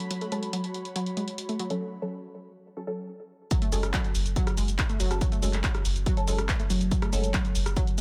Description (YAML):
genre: driving peak-time techno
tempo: 141 BPM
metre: 4/4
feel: straight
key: F# minor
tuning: A4 = 440 Hz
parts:
  - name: punchy analog drum machine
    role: drums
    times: 0.0-8.0 s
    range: handclaps, hi-hat, rim click, shaker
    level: -36 LUFS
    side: equal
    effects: none
  - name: airy breathy pad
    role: texture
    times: 0.0-1.8 s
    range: F#4 to B5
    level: -42 LUFS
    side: equal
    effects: chorus, sidechain pumping
  - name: unison pluck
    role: riff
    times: 0.1-8.0 s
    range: F#3 to A3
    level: -35 LUFS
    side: equal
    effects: overdrive, sidechain pumping, digital delay
  - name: filtered dub chord stab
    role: stabs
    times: 0.3-7.3 s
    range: F#3 to A4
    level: -38 LUFS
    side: equal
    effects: phaser, lush chorus, sidechain pumping, delay
  - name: electronic kick drum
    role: drums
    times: 3.5-7.9 s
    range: none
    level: -30 LUFS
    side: equal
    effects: none
  - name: saturated sub bass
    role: bass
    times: 3.7-8.0 s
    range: F#1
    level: -31 LUFS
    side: equal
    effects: overdrive, sidechain pumping, low-pass filter
room: little or no reverb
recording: none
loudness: -28 LUFS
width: mono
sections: 0.0-3.5 A section; 3.5-8.0 B section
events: filter sweep on synth arpeggio sound 0.0-3.5; break 1.8-3.5; drop 3.5-8.0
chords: 0.0 F#m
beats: | 0.11 0.53 0.96 1.38 | 1.81 2.23 2.66 3.08 | 3.51 3.94 4.36 4.79 | 5.21 5.64 6.06 6.49 | 6.92 7.34 7.77